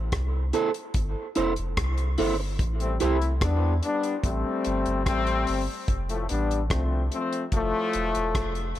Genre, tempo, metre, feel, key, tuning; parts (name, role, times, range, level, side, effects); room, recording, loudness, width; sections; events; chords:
dub reggae; 73 BPM; 4/4; straight; A4 = 441 Hz
soft dub sub bass; bass; 0.0-8.8 s; E1 to E2; -27 LUFS; equal
damped 70s drum kit; drums; 0.1-8.8 s; hi-hat, kick drum, rim click; -30 LUFS; equal
electric guitar at the edge of break-up; accompaniment; 0.5-3.2 s; E4 to C5; -29 LUFS; right 4 dB; analog chorus, dub echo
brilliant trombone section; second line; 2.8-8.7 s; A2 to E4; -26 LUFS; left 3 dB; high-pass filter, dub echo
light reverb, studio ambience; -24 LUFS; side -13 dB against mid
0.0-8.8 A section
0.0 Fmaj7; 2.6 Am7; 5.9 Fmaj7